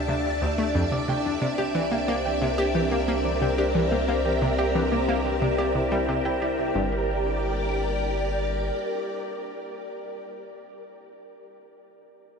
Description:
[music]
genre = ambient, sequencer-driven space music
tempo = 90 BPM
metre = 4/4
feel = straight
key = G dorian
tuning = A4 = 440 Hz
[part]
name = string machine, full ensemble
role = sustained chords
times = 0.0-10.2 s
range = C4 to A5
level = -27 LUFS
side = equal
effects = phaser, ensemble chorus
[part]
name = concert harp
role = arpeggios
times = 0.0-9.1 s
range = D4 to G5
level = -32 LUFS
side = left 1 dB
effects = auto-pan, tape echo
[part]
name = warm sub bass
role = bass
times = 0.0-8.7 s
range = G1 to D2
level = -31 LUFS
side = equal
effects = none
[part]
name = analog pluck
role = riff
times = 0.1-7.1 s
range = D2 to G4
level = -28 LUFS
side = equal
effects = chorus, tape echo
[sound]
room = wet huge ambient reverb, RT60 7.7 s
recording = in a vast, echoing space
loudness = -22 LUFS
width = side -6 dB against mid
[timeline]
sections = 0.0-6.8 A section; 6.8-9.4 B section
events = none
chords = 0.0 Dmadd9; 1.4 C7; 6.8 Gm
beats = 0.09 0.75 | 1.42 2.08 2.75 3.42 | 4.08 4.75 5.42 6.08 | 6.75 7.42 8.09 8.75

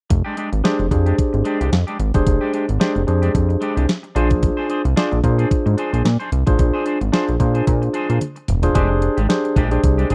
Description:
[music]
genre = early-eighties boogie funk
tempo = 111 BPM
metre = 4/4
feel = swing 56% on 16ths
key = F dorian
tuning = A4 = 443 Hz
[part]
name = electric guitar at the edge of break-up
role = riff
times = 0.1-10.1 s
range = Ab3 to C5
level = -30 LUFS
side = equal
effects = subtle chorus
[part]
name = chorused synth bass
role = bass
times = 0.1-10.1 s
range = E1 to Bb2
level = -20 LUFS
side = equal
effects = none
[part]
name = crisp 8-bit digital drum machine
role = drums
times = 0.1-10.1 s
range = hi-hat, kick drum, snare drum, toms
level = -22 LUFS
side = equal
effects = none
[part]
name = barky tine electric piano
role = accompaniment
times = 0.6-10.1 s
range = D4 to D5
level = -23 LUFS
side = equal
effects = overdrive
[sound]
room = little or no reverb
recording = dry, close 1970s-style studio recording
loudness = -18 LUFS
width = mono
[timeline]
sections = 0.1-8.8 A section; 8.8-10.1 B section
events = drum fill 8.2-8.8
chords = 0.1 Fm69; 4.2 Bb9; 8.8 Fm69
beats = | 0.10 0.65 1.19 1.73 | 2.27 2.81 3.35 3.89 | 4.43 4.97 5.51 6.05 | 6.59 7.13 7.67 8.21 | 8.75 9.29 9.83

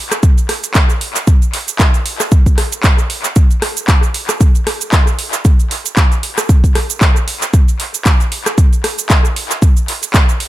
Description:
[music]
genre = nu-disco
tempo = 115 BPM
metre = 4/4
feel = swing 56% on 16ths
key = none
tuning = none
[part]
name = pop drum kit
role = drums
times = 0.1-10.5 s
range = cabasa, handclaps, hi-hat, rim click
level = -17 LUFS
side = right 1 dB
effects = tape echo
[part]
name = electronic kick drum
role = drums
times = 0.2-10.3 s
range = none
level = -10 LUFS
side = equal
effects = none
[sound]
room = little or no reverb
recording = echo-heavy mix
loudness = -11 LUFS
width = side -15 dB against mid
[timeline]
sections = 0.0-10.5 A section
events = none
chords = none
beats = 0.23 0.75 | 1.27 1.80 2.32 2.84 | 3.36 3.88 4.41 4.93 | 5.45 5.97 6.49 7.01 | 7.54 8.06 8.58 9.10 | 9.62 10.14

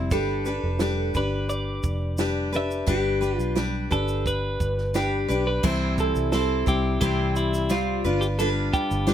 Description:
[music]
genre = acoustic pop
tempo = 87 BPM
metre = 4/4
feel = straight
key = C major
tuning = A4 = 439 Hz
[part]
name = picked steel-string acoustic guitar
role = accompaniment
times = 0.0-9.1 s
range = C3 to C5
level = -26 LUFS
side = left 2 dB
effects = none
[part]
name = vintage muted fingered electric bass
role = bass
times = 0.0-9.1 s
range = F1 to C2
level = -27 LUFS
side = equal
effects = none
[part]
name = twelve-string electric guitar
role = melody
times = 0.1-9.1 s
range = E4 to E5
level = -28 LUFS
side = right 1 dB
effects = none
[part]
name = compact cocktail drum kit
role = drums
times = 0.1-9.1 s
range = crash cymbal, kick drum, shaker, snare drum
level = -29 LUFS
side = right 3 dB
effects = none
[sound]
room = little or no reverb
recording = none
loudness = -22 LUFS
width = side -10 dB against mid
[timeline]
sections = 0.0-5.6 A section; 5.6-9.1 B section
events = none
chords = 0.1 G; 5.6 C; 8.1 G7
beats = | 0.12 0.81 1.50 2.19 | 2.88 3.57 4.26 4.95 | 5.64 6.33 7.02 7.71 | 8.40 9.09

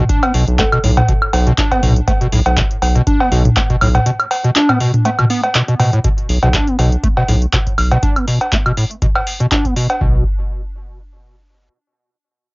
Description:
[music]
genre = acid house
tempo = 121 BPM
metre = 4/4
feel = swing 54% on 16ths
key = B minor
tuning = A4 = 439 Hz
[part]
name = overdriven acid bass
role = riff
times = 0.0-10.2 s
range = A2 to D4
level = -17 LUFS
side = equal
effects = tube saturation, analog chorus, sidechain pumping, cassette tape, analog delay
[part]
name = round analog bass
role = bass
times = 0.0-10.2 s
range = B1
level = -14 LUFS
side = equal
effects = tube saturation, sidechain pumping
[part]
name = booming analog drum machine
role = drums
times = 0.1-10.0 s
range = cowbell, handclaps, hi-hat, toms, woodblock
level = -16 LUFS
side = equal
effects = none
[part]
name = electronic kick drum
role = drums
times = 0.1-10.1 s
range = none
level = -18 LUFS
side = equal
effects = none
[part]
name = soft struck synth lead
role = melody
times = 0.6-0.8 s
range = A4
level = -26 LUFS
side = right 1 dB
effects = chorus, cassette tape, tape echo
[sound]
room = light reverb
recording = home recording on cassette, nothing above 7.5 kHz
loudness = -12 LUFS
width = side -26 dB against mid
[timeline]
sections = 0.0-6.0 A section; 6.0-10.0 B section; 10.0-12.0 C section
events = drop 0.0-6.0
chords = none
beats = | 0.09 0.59 1.08 1.58 | 2.08 2.57 3.07 3.56 | 4.06 4.56 5.05 5.55 | 6.04 6.54 7.04 7.53 | 8.03 8.52 9.02 9.52 | 10.01

